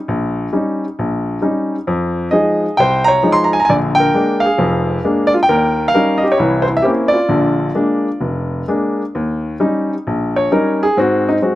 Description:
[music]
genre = solo jazz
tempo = 132 BPM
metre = 4/4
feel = swing 67% on 8ths, rubato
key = unclear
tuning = A4 = 439 Hz
[part]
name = warm baby grand piano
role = solo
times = 0.1-11.6 s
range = F1 to C6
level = -13 LUFS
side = equal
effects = none
[sound]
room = little or no reverb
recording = recorded outdoors, with no room sound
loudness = -13 LUFS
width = side -15 dB against mid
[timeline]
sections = 0.0-9.1 A section; 9.1-11.6 B section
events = grand piano solo 9.1-11.6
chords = 0.0 Eb7; 1.9 Fm7; 3.7 Bb7; 5.5 Eb7; 6.4 C7b9; 7.3 Bb7; 9.1 Eb7; 11.0 Ab7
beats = | 0.07 0.52 0.97 1.43 | 1.89 2.34 2.80 3.25 | 3.70 4.15 4.59 5.04 | 5.49 5.94 6.39 6.83 | 7.29 7.75 8.21 8.68 | 9.15 9.61 10.06 10.52 | 10.97 11.43

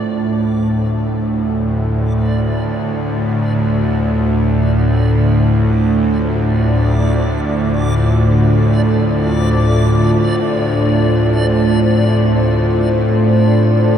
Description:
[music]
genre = dark ambient drone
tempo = free time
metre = none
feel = none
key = D minor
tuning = A4 = 439 Hz
[part]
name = deep dark ambient pad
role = sustained chords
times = 0.0-14.0 s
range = D4 to C5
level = -21 LUFS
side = equal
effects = chorus, built-in reverb, shimmer reverb
[part]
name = bowed-like drone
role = drone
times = 0.0-14.0 s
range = D2 to A2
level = -13 LUFS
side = equal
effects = built-in reverb
[part]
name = backwards swelling texture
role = texture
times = 0.0-14.0 s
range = D5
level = -27 LUFS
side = left 1 dB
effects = built-in reverb, shimmer reverb
[sound]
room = wet cathedral reverb, RT60 6.2 s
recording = in a vast, echoing space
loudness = -12 LUFS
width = side -9 dB against mid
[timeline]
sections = 0.0-14.0 A section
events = fade-in on ambient pad 0.0-14.0; fade-in on synth texture 0.0-14.0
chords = 0.0 Dm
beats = free time

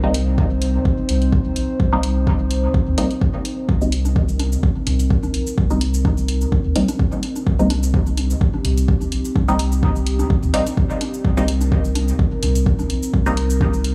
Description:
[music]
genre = dub techno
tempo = 127 BPM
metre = 4/4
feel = swing 54% on 16ths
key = C minor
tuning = A4 = 440 Hz
[part]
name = dark analog pad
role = sustained chords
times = 0.0-13.9 s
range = C4 to C5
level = -28 LUFS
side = equal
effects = chorus, vintage 12-bit sampler grit, sidechain pumping
[part]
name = filtered dub chord stab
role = stabs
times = 0.0-13.3 s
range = G3 to Eb4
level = -26 LUFS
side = equal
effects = chorus, phaser, cassette tape, sidechain pumping, dub echo
[part]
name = soft dub sub bass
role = bass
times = 0.0-13.9 s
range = Bb1 to Eb2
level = -22 LUFS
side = equal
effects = sidechain pumping
[part]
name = electronic hi-hat and cabasa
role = drums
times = 0.1-13.9 s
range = none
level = -33 LUFS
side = equal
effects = overdrive
[part]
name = electronic kick drum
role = drums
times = 0.4-13.7 s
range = none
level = -21 LUFS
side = equal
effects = overdrive
[part]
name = electronic congas and toms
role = percussion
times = 4.1-13.7 s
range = none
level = -32 LUFS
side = equal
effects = overdrive, sidechain pumping on perc, sidechain pumping on toms, dub echo
[sound]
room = little or no reverb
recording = small room ambience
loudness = -19 LUFS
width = mono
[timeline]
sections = 0.0-13.9 A section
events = none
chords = 0.0 Cm7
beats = 0.38 0.85 1.32 | 1.80 2.27 2.74 3.21 | 3.69 4.16 4.63 5.10 | 5.58 6.05 6.52 6.99 | 7.47 7.94 8.41 8.88 | 9.36 9.83 10.30 10.77 | 11.25 11.72 12.19 12.66 | 13.14 13.61

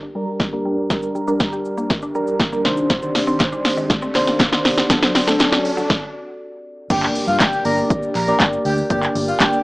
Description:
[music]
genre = dance-pop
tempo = 120 BPM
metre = 4/4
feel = straight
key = G harmonic minor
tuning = A4 = 439 Hz
[part]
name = glass harmonica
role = sustained chords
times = 0.0-9.6 s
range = C4 to D5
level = -27 LUFS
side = equal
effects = sidechain pumping, low-pass filter
[part]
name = mallet-like synth pluck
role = arpeggios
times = 0.0-5.9 s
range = C3 to G4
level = -29 LUFS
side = left 1 dB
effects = chorus, sidechain pumping, low-pass filter, dub echo
[part]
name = riser and impact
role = sound effects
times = 2.2-8.9 s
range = none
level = -32 LUFS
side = equal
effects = none
[part]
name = soft electric-piano-like synth keys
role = accompaniment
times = 0.2-9.6 s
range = Eb3 to D5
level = -21 LUFS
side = equal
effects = chorus, phaser, sidechain pumping, low-pass filter
[part]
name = deep house drum kit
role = drums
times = 0.4-9.6 s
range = crash cymbal, handclaps, hi-hat, kick drum, shaker, snare drum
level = -18 LUFS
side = equal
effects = none
[part]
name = group handclap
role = percussion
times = 3.4-9.5 s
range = none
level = -29 LUFS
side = left 2 dB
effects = none
[part]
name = airy dreamy lead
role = melody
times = 6.9-9.6 s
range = F5 to Bb5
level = -22 LUFS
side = equal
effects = chorus, sidechain pumping
[part]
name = vintage muted fingered electric bass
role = bass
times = 6.9-9.3 s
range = G1 to G2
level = -25 LUFS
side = equal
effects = sidechain pumping
[sound]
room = moderate small room reverb, RT60 0.6 s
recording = rough home demo mix, small speaker sound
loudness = -16 LUFS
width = side -21 dB against mid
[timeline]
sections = 0.0-6.9 A section; 6.9-9.6 B section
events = build-up 0.0-6.9; drum fill 0.0-5.9; filter sweep 0.0-6.9; stop 5.9-6.9; drop 6.9-9.6; impact 6.9-8.9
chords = 0.0 Gm; 2.7 Cmadd9; 4.9 D; 6.9 Gm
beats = 0.40 | 0.90 1.40 1.90 2.40 | 2.90 3.40 3.90 4.40 | 4.90 5.40 5.90 6.40 | 6.90 7.40 7.90 8.40 | 8.90 9.40

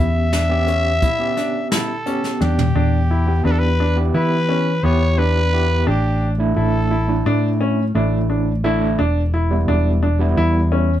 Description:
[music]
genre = progressive instrumental, band music in an uneven meter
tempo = 173 BPM (eighths)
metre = 9/8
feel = straight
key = E dorian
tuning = A4 = 439 Hz
[part]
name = growling trumpet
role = melody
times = 0.0-7.3 s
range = G4 to E5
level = -22 LUFS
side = equal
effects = none
[part]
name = overdriven tine electric piano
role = accompaniment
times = 0.0-10.9 s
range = G3 to G4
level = -23 LUFS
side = right 2 dB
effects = medium tremolo
[part]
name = warm grand piano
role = arpeggios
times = 0.0-10.9 s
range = B3 to E4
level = -24 LUFS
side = left 1 dB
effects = none
[part]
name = fingered electric bass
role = bass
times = 0.0-11.0 s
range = E1 to E3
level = -18 LUFS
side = equal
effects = none
[part]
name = jazz brush drum kit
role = drums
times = 0.3-2.7 s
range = hi-hat, kick drum, snare drum, toms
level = -23 LUFS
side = equal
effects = none
[sound]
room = moderate studio ambience, RT60 0.5 s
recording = band playing live in one room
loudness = -16 LUFS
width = side -11 dB against mid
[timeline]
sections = 0.0-2.8 A section; 2.8-11.0 B section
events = drum fill 2.2-2.8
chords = 0.0 Em; 5.9 Asus4; 9.0 Em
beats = 0.33 0.68 1.02 1.37 1.72 2.06 2.41 | 2.76 3.10 3.45 3.80 4.14 4.49 4.83 5.18 5.53 | 5.87 6.22 6.57 6.91 7.26 7.60 7.95 8.29 8.64 | 8.99 9.33 9.68 10.02 10.37 10.71

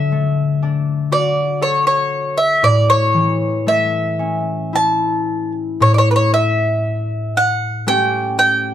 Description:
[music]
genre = celtic folk, Celtic slow air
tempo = 55-61 BPM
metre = 3/4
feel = rubato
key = A mixolydian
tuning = A4 = 435 Hz
[part]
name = bowl-back mandolin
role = melody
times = 0.0-8.7 s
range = B4 to A5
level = -16 LUFS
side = right 1 dB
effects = none
[part]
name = concert harp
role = accompaniment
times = 0.0-8.7 s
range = A2 to A4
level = -18 LUFS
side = left 2 dB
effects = none
[sound]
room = moderate studio reverb, RT60 0.6 s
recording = dark, warm production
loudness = -14 LUFS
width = side -10 dB against mid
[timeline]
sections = 0.0-5.8 A section; 5.8-8.7 B section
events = none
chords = 0.0 D; 2.6 A; 5.8 A7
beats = 0.62 1.61 | 2.63 3.67 4.75 | 5.81 6.85 7.88

